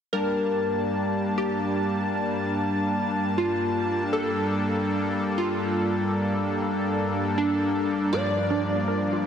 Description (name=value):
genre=house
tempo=120 BPM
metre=4/4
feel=straight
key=G minor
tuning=A4 = 440 Hz
part: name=plucky unison lead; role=melody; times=0.1-8.8 s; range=D4 to D5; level=-29 LUFS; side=equal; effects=dub echo
part: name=glassy wavetable pluck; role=second line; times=0.1-8.8 s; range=D4 to D5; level=-35 LUFS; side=right 2 dB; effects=chorus, dub echo
part: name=airy breathy pad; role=sustained chords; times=0.1-9.3 s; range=G2 to A5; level=-29 LUFS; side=right 1 dB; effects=chorus
part: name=soft supersaw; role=stabs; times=0.1-9.3 s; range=G2 to A5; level=-27 LUFS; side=left 2 dB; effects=dub echo
part: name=tight sequenced synth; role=arpeggios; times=8.1-9.2 s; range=Bb3 to Bb4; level=-31 LUFS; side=right 5 dB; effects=chorus, dub echo
room=wet lush hall reverb, RT60 2.2 s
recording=dense, heavily limited modern master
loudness=-23 LUFS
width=side -8 dB against mid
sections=0.1-9.3 A section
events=none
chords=0.1 Gmadd9; 8.1 Bb/G